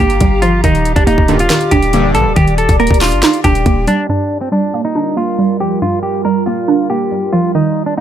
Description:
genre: hip hop, trap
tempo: 139 BPM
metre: 4/4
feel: half-time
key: G minor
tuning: A4 = 441 Hz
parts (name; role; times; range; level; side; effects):
- semi-hollow electric guitar; melody; 0.0-8.0 s; C4 to Bb4; -16 LUFS; left 1 dB; low-pass filter
- hollow square pluck; accompaniment; 0.0-8.0 s; G2 to Eb4; -16 LUFS; right 3 dB; chorus, low-pass filter
- warbly tape-like pad; sustained chords; 0.0-8.0 s; Eb3 to D6; -20 LUFS; right 3 dB; chorus, built-in reverb, phaser
- hard-hitting 808-style bass; bass; 0.0-3.9 s; Eb1 to Bb1; -16 LUFS; equal; none
- trap drum kit; drums; 0.1-8.0 s; handclaps, hi-hat, kick drum, snare drum; -15 LUFS; equal; none
- chorused polysynth; stabs; 1.3-2.2 s; G1 to D3; -20 LUFS; left 1 dB; ping-pong delay
room: little or no reverb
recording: low-pass filter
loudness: -11 LUFS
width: side -10 dB against mid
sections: 0.0-4.1 A section; 4.1-8.0 B section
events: none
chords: 0.0 Gm7; 0.6 Ebmaj7; 4.1 Gm7

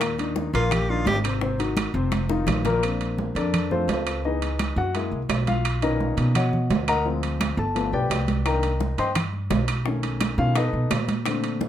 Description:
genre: Afro-Cuban jazz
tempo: 171 BPM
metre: 4/4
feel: straight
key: unclear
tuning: A4 = 440 Hz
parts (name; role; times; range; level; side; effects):
- warm grand piano; accompaniment; 0.0-11.7 s; Bb2 to C6; -26 LUFS; left 4 dB; none
- upright bass; bass; 0.0-11.7 s; F1 to B2; -26 LUFS; right 1 dB; none
- bongos; percussion; 0.0-2.7, 8.5-11.7 s; none; -32 LUFS; left 7 dB; none
- claves; percussion; 0.0-11.4 s; none; -36 LUFS; equal; none
- congas; percussion; 0.0-11.7 s; none; -30 LUFS; right 2 dB; none
- timbales; percussion; 0.0-11.7 s; none; -30 LUFS; right 7 dB; none
- warm tenor saxophone; melody; 0.5-1.2 s; F4 to G4; -26 LUFS; right 1 dB; none
room: moderate studio reverb, RT60 0.7 s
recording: none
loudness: -21 LUFS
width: side -11 dB against mid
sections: 0.0-2.8 A section; 2.8-11.7 A section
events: tenor saxophone solo 0.0-2.8; drum fill 2.1-2.8; grand piano solo 2.8-11.7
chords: 0.0 Eb5; 1.4 Ab7; 2.1 F5; 2.8 Bbmaj9; 4.2 Dbm9; 4.9 Gb9; 5.7 Bmaj9; 7.1 Dm7b5; 7.8 G7; 8.5 Cm7; 9.9 B9

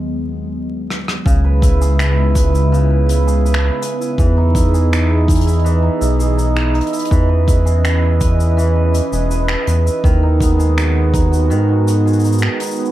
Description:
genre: folktronica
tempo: 82 BPM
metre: 4/4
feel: straight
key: C# minor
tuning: A4 = 440 Hz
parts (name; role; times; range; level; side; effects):
- warbly tape-like pad; sustained chords; 0.0-12.9 s; D#2 to D#5; -22 LUFS; equal; chorus, built-in reverb
- soft brush drum kit; drums; 0.9-12.9 s; cabasa, finger snaps, hi-hat, rim click; -25 LUFS; left 1 dB; none
- cimbalom; arpeggios; 1.3-12.9 s; C#3 to B4; -20 LUFS; right 2 dB; tape echo, plate reverb
- round analog bass; bass; 1.3-12.5 s; E1 to G#2; -14 LUFS; equal; none
- electronic kick drum; drums; 1.3-11.3 s; none; -16 LUFS; equal; none
room: light reverb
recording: vinyl crackle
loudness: -12 LUFS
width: side -14 dB against mid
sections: 0.0-1.3 A section; 1.3-12.9 B section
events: break 0.0-1.3; filter sweep on ambient pad 0.0-1.3; drum fill 0.9-1.3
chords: 0.0 G#m7/D#; 1.3 C#m7; 4.2 Emaj7; 7.1 C#m7/E; 10.0 G#m7/D#

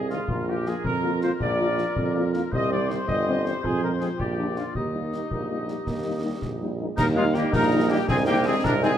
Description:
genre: military-style march for wind band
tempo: 108 BPM (dotted quarters)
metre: 6/8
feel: straight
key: Eb major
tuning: A4 = 440 Hz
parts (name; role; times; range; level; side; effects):
- warm trumpet section; melody; 0.0-9.0 s; Eb4 to Eb5; -29 LUFS; equal; none
- warm woodwind section; second line; 0.0-8.9 s; Ab3 to Eb5; -31 LUFS; left 2 dB; none
- clear tuba; bass; 0.0-9.0 s; G1 to F2; -27 LUFS; right 3 dB; none
- mellow French horn section; accompaniment; 0.1-8.9 s; Eb3 to F4; -31 LUFS; left 4 dB; none
- concert snare drum, concert bass drum and clash cymbals; drums; 0.1-9.0 s; none; -31 LUFS; left 2 dB; none
- warm euphonium; second line; 5.3-9.0 s; F3 to Eb4; -31 LUFS; right 4 dB; none
- wooden piccolo; second line; 7.0-9.0 s; F5 to Bb5; -30 LUFS; left 3 dB; none
- mellow trombone section; sustained chords; 7.0-9.0 s; G3 to Eb4; -31 LUFS; right 2 dB; none
room: light reverb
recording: none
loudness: -22 LUFS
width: side -10 dB against mid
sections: 0.0-7.0 A section; 7.0-9.0 A section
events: none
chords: 0.3 Bb; 2.5 Cm; 3.6 Fm; 4.2 Bb; 4.7 Eb; 8.1 Ab/C

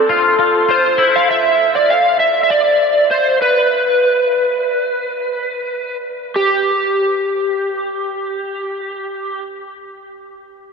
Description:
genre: dream pop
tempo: 86-101 BPM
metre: 4/4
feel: straight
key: unclear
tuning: A4 = 440 Hz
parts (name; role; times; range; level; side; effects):
- overdriven slide guitar; melody; 0.0-9.4 s; G4 to F5; -14 LUFS; right 1 dB; analog chorus, ping-pong delay
- twangy electric guitar; arpeggios; 0.0-1.3 s; E4 to F4; -18 LUFS; left 3 dB; ensemble chorus, ping-pong delay
room: wet cathedral reverb, RT60 6.8 s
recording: dreamy mix soaked in reverb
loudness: -13 LUFS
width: side -5 dB against mid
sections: 0.0-6.3 A section; 6.3-9.1 B section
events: slowing down 1.3-6.3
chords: 0.0 F; 1.3 N.C.

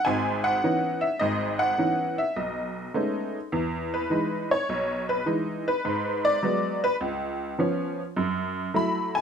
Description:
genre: solo jazz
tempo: 104 BPM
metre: 4/4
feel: swing 69% on 8ths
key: C# minor, E major from 3.5 s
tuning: A4 = 440 Hz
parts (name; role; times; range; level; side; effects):
- honky-tonk upright piano; solo; 0.0-9.2 s; G#1 to B5; -24 LUFS; equal; none
room: moderate large studio reverb, RT60 1.0 s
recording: none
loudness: -24 LUFS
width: side -7 dB against mid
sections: 0.0-3.5 A section; 3.5-9.2 B section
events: honky-tonk piano solo 3.5-9.2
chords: 0.0 C#m9; 2.4 B13; 3.5 Emaj7; 5.8 G#m7b5; 7.0 C#7; 8.2 F#m7

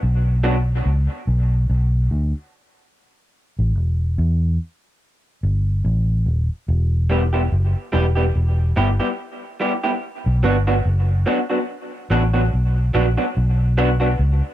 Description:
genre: dub reggae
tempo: 72 BPM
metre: 4/4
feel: swing 56% on 16ths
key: B minor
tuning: A4 = 440 Hz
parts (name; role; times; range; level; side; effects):
- vintage muted fingered electric bass; bass; 0.0-14.4 s; D#1 to E2; -17 LUFS; equal; none
- electric guitar through a small old amp; accompaniment; 0.4-0.6, 7.1-14.1 s; F#3 to G4; -22 LUFS; right 1 dB; wide subtle chorus, high-pass filter, dub echo
room: little or no reverb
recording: dry, close 1970s-style studio recording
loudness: -17 LUFS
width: side -13 dB against mid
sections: 0.0-10.0 A section; 10.0-14.5 B section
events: break 0.0-6.7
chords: 0.0 N.C.; 3.4 A5; 6.7 Em; 10.0 Bm

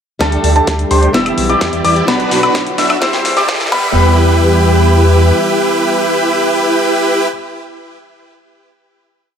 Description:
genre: EDM, festival progressive house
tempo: 128 BPM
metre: 4/4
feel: straight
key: E minor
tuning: A4 = 443 Hz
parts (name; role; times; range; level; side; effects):
- fingerpicked steel-string acoustic guitar; accompaniment; 0.2-7.3 s; F#3 to C5; -19 LUFS; left 2 dB; sidechain pumping, digital delay
- lush unison pad; sustained chords; 0.2-7.3 s; D3 to G4; -21 LUFS; right 1 dB; chorus, sidechain pumping
- warm concert grand piano; arpeggios; 0.2-7.3 s; A5 to E6; -18 LUFS; left 2 dB; sidechain pumping, low-pass filter, digital delay
- big supersaw lead; riff; 0.2-7.3 s; D4 to E5; -14 LUFS; right 1 dB; sidechain pumping, low-pass filter, digital delay
- wide detuned saw bass; bass; 0.2-5.3 s; E1 to E2; -14 LUFS; equal; chorus, sidechain pumping
- big-room dance drum kit; drums; 0.2-3.8 s; crash cymbal, hi-hat, snare drum, woodblock; -20 LUFS; left 1 dB; high-pass filter on snare, high-pass filter on hats, high-pass filter on perc, high-pass filter on cymbals
- electronic kick drum; drums; 0.2-3.8 s; none; -17 LUFS; equal; high-pass filter on kick
- riser; sound effects; 1.5-4.0 s; none; -26 LUFS; equal; none
room: moderate lush hall reverb, RT60 2.0 s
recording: high-pass filter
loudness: -10 LUFS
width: side -8 dB against mid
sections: 0.2-4.0 build; 4.0-7.7 final hit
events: build-up 0.2-4.0; drum fill 0.2-4.0; filter sweep on supersaw synth 0.2-4.0; filter sweep 0.2-4.0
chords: 0.2 Dsus4; 1.1 Em; 2.1 Bm; 3.0 C; 3.7 Em

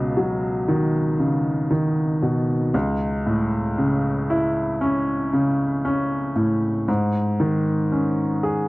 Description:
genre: pop ballad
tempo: 58 BPM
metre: 4/4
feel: straight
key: unclear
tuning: A4 = 440 Hz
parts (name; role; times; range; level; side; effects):
- clear baby grand piano; solo; 0.0-8.7 s; C#2 to G#4; -19 LUFS; equal; cassette tape
room: studio reverb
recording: home recording on cassette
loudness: -19 LUFS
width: side -20 dB against mid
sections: 0.0-8.7 A section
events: none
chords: 0.0 B/C#; 2.7 A/C#; 6.9 G#sus4

